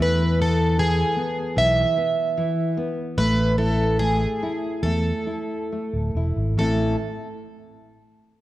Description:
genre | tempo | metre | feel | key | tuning
fado-style ballad | 66-77 BPM | 4/4 | rubato | unclear | A4 = 440 Hz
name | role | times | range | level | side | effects
picked plugged-in twelve-string acoustic guitar | melody | 0.0-7.0 s | G#4 to E5 | -24 LUFS | right 1 dB | none
nylon-string guitar | accompaniment | 0.0-7.0 s | A2 to E4 | -26 LUFS | left 1 dB | none
fingered electric bass | bass | 0.0-6.9 s | D1 to E2 | -23 LUFS | equal | none
room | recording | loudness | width
wet scoring stage reverb, RT60 1.9 s | worn, warbling old tape, cassette tape, warbly pitch drift | -20 LUFS | side -15 dB against mid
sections
0.0-6.6 A section; 6.6-8.4 B section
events
none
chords
0.0 E; 3.2 A5; 6.6 Am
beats
| 0.00 0.78 1.57 2.37 | 3.17 3.99 4.83 5.70 | 6.57

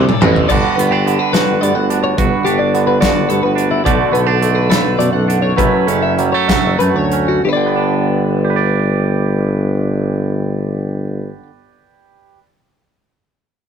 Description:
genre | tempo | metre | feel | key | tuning
math rock and midwest emo | 61-72 BPM (dotted quarters) | 6/8 | straight | G lydian | A4 = 441 Hz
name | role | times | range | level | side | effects
twelve-string electric guitar | arpeggios | 0.0-11.5 s | E4 to G5 | -19 LUFS | left 6 dB | none
overdriven electric guitar | riff | 0.0-0.5 s | D3 to F#4 | -20 LUFS | right 1 dB | phaser
warm tuba | bass | 0.0-11.3 s | F#1 to B2 | -17 LUFS | left 1 dB | none
modern studio drum kit | drums | 0.1-7.3 s | crash cymbal, hi-hat, kick drum, snare drum, toms | -18 LUFS | equal | none
twangy electric guitar | accompaniment | 0.5-12.5 s | D2 to D5 | -17 LUFS | right 7 dB | none
room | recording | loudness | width
light reverb | rough rehearsal-room recording, warm saturation | -12 LUFS | side -7 dB against mid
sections
0.5-7.4 A section; 7.4-11.4 B section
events
drum fill 0.0-0.5; slowing down 3.9-7.4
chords
0.5 Gmaj7; 3.9 Bm7; 5.6 F#m7; 7.4 G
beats
| 0.49 1.33 | 2.17 3.01 | 3.85 4.70 | 5.57 6.48 | 7.44 8.43 | 9.42 10.41

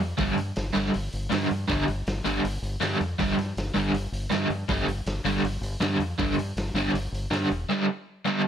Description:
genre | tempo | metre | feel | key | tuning
garage rock duo or trio | 160 BPM | 4/4 | straight | unclear | A4 = 439 Hz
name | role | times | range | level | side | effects
growling fingered electric bass | bass | 0.0-7.6 s | E1 to G2 | -31 LUFS | left 1 dB | overdrive
crunchy overdriven guitar | riff | 0.2-8.4 s | G2 to G3 | -25 LUFS | right 1 dB | tremolo
vintage drum kit | drums | 0.2-7.6 s | hi-hat, kick drum, snare drum | -34 LUFS | equal | none
room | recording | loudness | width
light reverb, studio ambience | none | -24 LUFS | side -9 dB against mid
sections
0.0-8.5 A section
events
none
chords
0.0 G5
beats
| 0.19 0.56 0.94 1.31 | 1.69 2.06 2.44 2.81 | 3.19 3.56 3.94 4.32 | 4.69 5.07 5.44 5.82 | 6.19 6.57 6.94 7.32 | 7.69 8.06

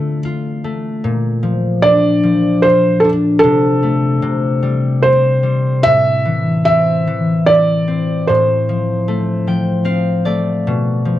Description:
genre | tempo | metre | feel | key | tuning
children's music, lullaby | 75 BPM | 3/4 | rubato | F major | A4 = 440 Hz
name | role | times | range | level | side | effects
felt-muted upright piano | melody | 0.0-9.8 s | A4 to E5 | -14 LUFS | right 2 dB | none
concert harp | accompaniment | 0.0-11.2 s | A2 to G5 | -15 LUFS | left 2 dB | none
room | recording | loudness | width
small room ambience | dry, close 1970s-style studio recording | -12 LUFS | side -13 dB against mid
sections
0.0-11.2 A section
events
harp fill 9.1-10.7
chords
0.0 Dm; 1.0 Bb; 3.4 Am/C; 4.2 C5; 5.9 Am; 8.3 F/A; 10.7 Bdim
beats
0.24 | 1.04 1.84 2.64 | 3.43 4.23 5.04 | 5.86 6.67 7.49 | 8.29 9.08 9.87 | 10.66

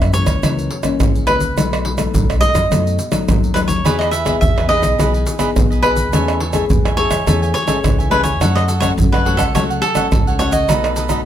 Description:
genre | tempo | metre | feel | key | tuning
samba and choro | 105 BPM | 4/4 | straight | unclear | A4 = 439 Hz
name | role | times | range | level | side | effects
cavaquinho | melody | 0.0-11.3 s | A4 to E5 | -20 LUFS | equal | slapback echo
nylon-string guitar | accompaniment | 0.0-11.3 s | F#2 to G#4 | -21 LUFS | left 7 dB | none
upright bass | bass | 0.0-11.2 s | B1 to F#2 | -20 LUFS | equal | none
tube shaker, pandeiro, tamborim and surdo | percussion | 0.0-11.3 s | none | -18 LUFS | right 1 dB | none
cavaquinho | accompaniment | 3.8-11.2 s | D#4 to G#5 | -24 LUFS | right 7 dB | none
room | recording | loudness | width
light reverb | close, detailed microphones | -13 LUFS | side -10 dB against mid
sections
0.0-11.3 A section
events
none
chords
0.0 F#7; 1.6 B7; 3.9 Emaj7; 6.1 Amaj7/E; 8.4 F#m; 10.7 B7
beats
0.43 1.00 | 1.57 2.14 2.71 3.28 | 3.85 4.42 4.99 5.56 | 6.13 6.70 7.27 7.84 | 8.41 8.98 9.55 10.13 | 10.70

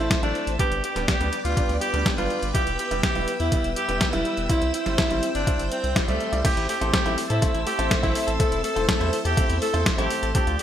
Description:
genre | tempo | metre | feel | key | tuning
italo disco | 123 BPM | 4/4 | straight | A minor | A4 = 440 Hz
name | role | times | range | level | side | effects
raspy alto saxophone | melody | 0.0-10.6 s | A3 to A4 | -26 LUFS | equal | digital delay
string machine, full ensemble | sustained chords | 0.0-10.6 s | A4 to E6 | -31 LUFS | left 1 dB | ensemble chorus
clear baby grand piano | stabs | 0.0-10.5 s | F3 to D5 | -30 LUFS | right 3 dB | none
round analog bass | bass | 0.0-10.6 s | D1 to A2 | -28 LUFS | equal | none
detuned 8-bit digital drum machine | drums | 0.1-10.6 s | crash cymbal, hi-hat, snare drum | -28 LUFS | left 1 dB | studio reverb, gated reverb
electronic kick drum | drums | 0.1-10.4 s | none | -25 LUFS | equal | studio reverb
direct-recorded clean electric guitar | arpeggios | 6.4-10.6 s | A3 to A4 | -33 LUFS | left 5 dB | digital delay
room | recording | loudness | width
light reverb | bright 1980s-style digital production | -21 LUFS | side -10 dB against mid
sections
0.0-6.4 A section; 6.4-10.6 B section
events
none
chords
0.0 Am; 0.6 G; 2.5 Em; 4.5 C; 6.4 Am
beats
0.11 | 0.59 1.08 1.57 2.06 | 2.54 3.03 3.52 4.01 | 4.50 4.98 5.47 5.96 | 6.45 6.93 7.42 7.91 | 8.40 8.89 9.37 9.86 | 10.35

